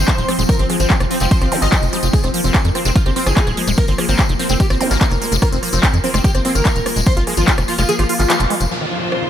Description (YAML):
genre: psychedelic trance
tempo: 146 BPM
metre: 4/4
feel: straight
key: F minor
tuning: A4 = 440 Hz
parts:
  - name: supersaw stab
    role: melody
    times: 0.0-8.6 s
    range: C4 to Eb5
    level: -22 LUFS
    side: right 1 dB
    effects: phaser, sidechain pumping, tape echo
  - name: pulsing gated texture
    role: sustained chords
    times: 0.0-9.3 s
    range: F3 to C4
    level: -24 LUFS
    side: left 1 dB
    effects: chorus, built-in reverb, sidechain pumping
  - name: liquid acid bass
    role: riff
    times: 0.0-9.3 s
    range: Eb3 to G4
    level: -25 LUFS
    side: equal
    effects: phaser, auto-pan, sidechain pumping, tape echo
  - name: tight sequencer bass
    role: bass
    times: 0.0-8.7 s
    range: Eb1 to F2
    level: -18 LUFS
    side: equal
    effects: none
  - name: electronic kick drum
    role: drums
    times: 0.1-7.6 s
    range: none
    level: -16 LUFS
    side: equal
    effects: overdrive
  - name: techno drum kit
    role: drums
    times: 0.1-9.2 s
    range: handclaps, hi-hat, rim click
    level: -22 LUFS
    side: equal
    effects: overdrive
  - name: tambourine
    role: percussion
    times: 0.1-8.7 s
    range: none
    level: -27 LUFS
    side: left 4 dB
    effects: none
  - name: metallic wobble bass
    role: second line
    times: 0.7-8.2 s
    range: F3 to C4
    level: -32 LUFS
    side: right 2 dB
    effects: none
  - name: zap and downlifter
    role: sound effects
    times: 1.5-1.6, 4.8-4.9, 8.7-9.3 s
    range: none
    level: -26 LUFS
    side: right 1 dB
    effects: none
  - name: clear symphonic string section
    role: texture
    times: 8.7-9.3 s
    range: F4 to C5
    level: -23 LUFS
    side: left 2 dB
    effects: sidechain pumping
room: digital ambience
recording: none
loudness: -13 LUFS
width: side -10 dB against mid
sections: 0.0-8.7 A section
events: drop 0.0-8.7; kick drops out 7.9-8.7; band accent 8.3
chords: 0.0 F5